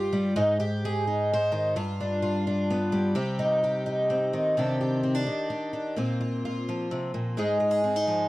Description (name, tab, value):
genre	folk, solo fingerstyle acoustic guitar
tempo	128 BPM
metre	3/4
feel	straight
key	C minor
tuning	A4 = 441 Hz
part	picked twelve-string acoustic guitar	solo	0.0-8.3 s	G2 to C5	-24 LUFS	equal	none
room	little or no reverb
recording	dry, close 1970s-style studio recording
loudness	-24 LUFS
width	side -18 dB against mid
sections	0.0-4.6 A section; 4.6-8.3 B section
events	none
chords	0.4 Ab; 1.8 G7; 3.2 Cm; 4.6 Cmadd9; 6.0 Bbsus2; 7.4 Fm7/Ab